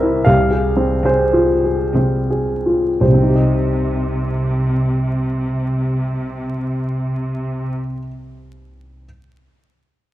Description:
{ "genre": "classical", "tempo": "54-82 BPM", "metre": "3/4", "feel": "rubato", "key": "C minor", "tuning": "A4 = 439 Hz", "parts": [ { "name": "warm baby grand piano", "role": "melody", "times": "0.0-9.1 s", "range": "C2 to F5", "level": "-16 LUFS", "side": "equal", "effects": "none" }, { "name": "muted chamber cello section", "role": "bass", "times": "0.0-7.7 s", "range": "C3", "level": "-21 LUFS", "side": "equal", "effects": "none" } ], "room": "moderate scoring stage reverb, RT60 1.7 s", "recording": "dark, warm production, vinyl crackle", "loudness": "-15 LUFS", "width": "side -14 dB against mid", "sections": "0.0-3.0 A section; 3.0-9.0 B section", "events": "slowing down 0.0-3.0", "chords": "0.3 Fm/C" }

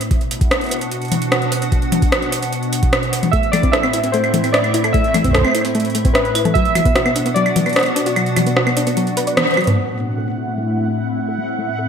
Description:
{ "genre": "IDM", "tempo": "149 BPM", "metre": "4/4", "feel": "straight", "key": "unclear", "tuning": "A4 = 440 Hz", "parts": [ { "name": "hollow soft pad", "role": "sustained chords", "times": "0.0-11.9 s", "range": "A2 to F#5", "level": "-22 LUFS", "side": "right 1 dB", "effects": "ensemble chorus" }, { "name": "booming analog drum machine", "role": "drums", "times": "0.0-9.8 s", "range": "claves, hi-hat, rim click, toms", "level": "-18 LUFS", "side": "equal", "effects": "overdrive, gated reverb" }, { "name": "electronic kick drum", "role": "drums", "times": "0.1-6.9 s", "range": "none", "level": "-18 LUFS", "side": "equal", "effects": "overdrive" }, { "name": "warbly lo-fi synth keys", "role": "melody", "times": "3.3-9.3 s", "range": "B4 to E5", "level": "-20 LUFS", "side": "right 1 dB", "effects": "chorus, digital delay" }, { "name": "soft round pluck", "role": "arpeggios", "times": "3.3-11.8 s", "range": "F#3 to E5", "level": "-22 LUFS", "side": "left 2 dB", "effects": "chorus, digital delay" }, { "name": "bubbling stepped-filter texture", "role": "texture", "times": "9.8-11.9 s", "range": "F#5", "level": "-28 LUFS", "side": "right 2 dB", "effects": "chorus, built-in reverb" } ], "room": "wet lush hall reverb, RT60 1.9 s, digital ambience", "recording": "bright 1980s-style digital production", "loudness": "-14 LUFS", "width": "side -7 dB against mid", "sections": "0.0-9.8 A section; 9.8-11.9 B section", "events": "kick drops out 8.2-9.8; drum fill 9.4-9.8; band accent 9.4; filter sweep on synth arpeggio sound 9.8-11.9", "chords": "0.1 Bm; 3.3 Am; 6.6 Bm; 9.8 Am" }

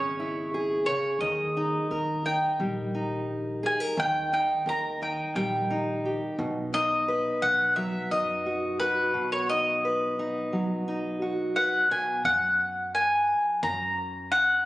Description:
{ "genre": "indie folk with a building arrangement", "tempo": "87 BPM", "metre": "4/4", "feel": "straight", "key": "unclear", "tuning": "A4 = 438 Hz", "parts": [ { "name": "mandolin", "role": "melody", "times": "0.0-14.7 s", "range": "B4 to A#5", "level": "-26 LUFS", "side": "equal", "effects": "none" }, { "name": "fingerpicked steel-string acoustic guitar", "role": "accompaniment", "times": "0.0-14.7 s", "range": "B2 to B4", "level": "-29 LUFS", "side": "equal", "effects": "none" }, { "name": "upright bass", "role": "bass", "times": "0.0-14.7 s", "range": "G#1 to F#2", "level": "-39 LUFS", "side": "equal", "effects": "none" } ], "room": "moderate recital hall reverb, RT60 1.6 s", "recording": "recorded on a phone in the room, club reverb, compression", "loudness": "-24 LUFS", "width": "side -17 dB against mid", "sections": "0.0-12.3 A section; 12.3-14.7 B section", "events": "none", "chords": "0.0 C#m; 1.2 D#; 6.4 B; 12.3 F#" }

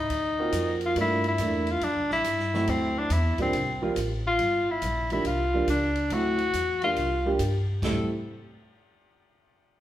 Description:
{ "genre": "jazz, small-group swing and bop", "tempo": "140 BPM", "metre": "4/4", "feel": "swing 66% on 8ths", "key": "F major", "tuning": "A4 = 440 Hz", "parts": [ { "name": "warm tenor saxophone", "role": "melody", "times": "0.0-8.1 s", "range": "C4 to A4", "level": "-26 LUFS", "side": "left 1 dB", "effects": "none" }, { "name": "upright bass", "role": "bass", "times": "0.1-8.1 s", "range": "F1 to G2", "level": "-30 LUFS", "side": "equal", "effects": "none" }, { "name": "open jazz drum kit", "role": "drums", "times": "0.1-8.0 s", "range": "crash cymbal, hi-hat, kick drum, ride cymbal, snare drum", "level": "-37 LUFS", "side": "equal", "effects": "none" }, { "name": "warm upright piano", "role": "accompaniment", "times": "0.4-8.1 s", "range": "F3 to G4", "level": "-29 LUFS", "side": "right 2 dB", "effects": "none" } ], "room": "wet large studio reverb, RT60 1.3 s", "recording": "band playing live in one room", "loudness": "-24 LUFS", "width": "side -12 dB against mid", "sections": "1.0-7.8 A section; 7.8-9.5 B section", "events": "none", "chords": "0.1 D7alt; 1.0 Gm7; 1.8 C7sus4; 2.7 D9; 3.5 C7sus4; 4.4 Gm7; 5.3 C9sus4; 6.1 D9; 7.0 C9sus4; 7.8 Fmaj7" }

